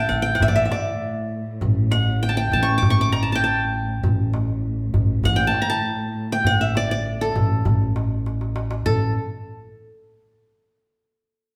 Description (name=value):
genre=Turkish makam ensemble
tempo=99 BPM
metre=4/4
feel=straight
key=A makam hicaz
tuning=A4 = 441 Hz
part: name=qanun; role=melody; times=0.0-9.1 s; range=A4 to D6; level=-24 LUFS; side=equal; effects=none
part: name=upright bass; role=bass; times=0.0-9.1 s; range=A1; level=-25 LUFS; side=equal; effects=none
part: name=dark chamber cello section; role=drone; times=0.0-8.9 s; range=A2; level=-35 LUFS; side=equal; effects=none
part: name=darbuka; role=percussion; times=0.4-9.1 s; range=none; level=-27 LUFS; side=equal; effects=none
room=wet large studio reverb, RT60 1.4 s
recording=band playing live in one room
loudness=-21 LUFS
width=mono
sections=0.0-8.9 A section; 8.9-11.3 B section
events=drum fill 8.3-8.9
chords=none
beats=0.40 1.01 | 1.61 2.22 2.82 3.42 | 4.03 4.63 5.24 5.84 | 6.45 7.05 7.66 8.26 | 8.86